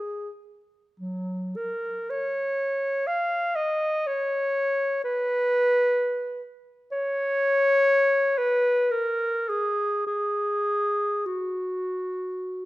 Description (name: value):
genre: classical, free, expressive piece for unaccompanied clarinet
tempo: 43-65 BPM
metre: 3/4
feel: rubato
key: F# major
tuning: A4 = 436 Hz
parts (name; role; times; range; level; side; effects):
- warm clarinet; solo; 0.0-12.7 s; F#3 to E#5; -23 LUFS; equal; none
room: moderate recital hall reverb, RT60 1.5 s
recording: close, detailed microphones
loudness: -23 LUFS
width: side -17 dB against mid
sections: 0.0-12.7 A section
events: none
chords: none